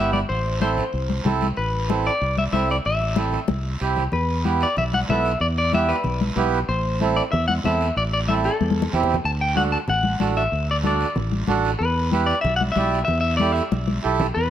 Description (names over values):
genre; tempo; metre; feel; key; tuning
latin, cumbia; 188 BPM; 4/4; straight; E minor; A4 = 438 Hz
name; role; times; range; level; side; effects
semi-hollow electric guitar; melody; 0.0-14.5 s; A4 to A5; -24 LUFS; left 2 dB; spring reverb
accordion; accompaniment; 0.0-14.3 s; B3 to D5; -24 LUFS; right 6 dB; none
fingered electric bass; bass; 0.0-14.5 s; G1 to E2; -24 LUFS; equal; none
congas; percussion; 0.1-14.3 s; none; -26 LUFS; left 3 dB; none
guiro; percussion; 0.1-14.5 s; none; -36 LUFS; right 3 dB; none
room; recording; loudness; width
light reverb; none; -19 LUFS; side -10 dB against mid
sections
0.0-4.1 A section; 4.1-14.4 B section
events
drum fill 3.5-4.1, 8.6-9.2, 13.7-14.4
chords
0.3 Am; 4.1 Em; 6.7 Am; 9.2 D; 11.8 Em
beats
| 0.29 0.61 0.93 1.25 | 1.57 1.89 2.21 2.53 | 2.85 3.17 3.49 3.81 | 4.13 4.45 4.77 5.09 | 5.41 5.73 6.05 6.37 | 6.69 7.01 7.33 7.65 | 7.97 8.29 8.61 8.93 | 9.24 9.56 9.88 10.21 | 10.52 10.84 11.16 11.48 | 11.80 12.12 12.44 12.76 | 13.08 13.40 13.72 14.04 | 14.36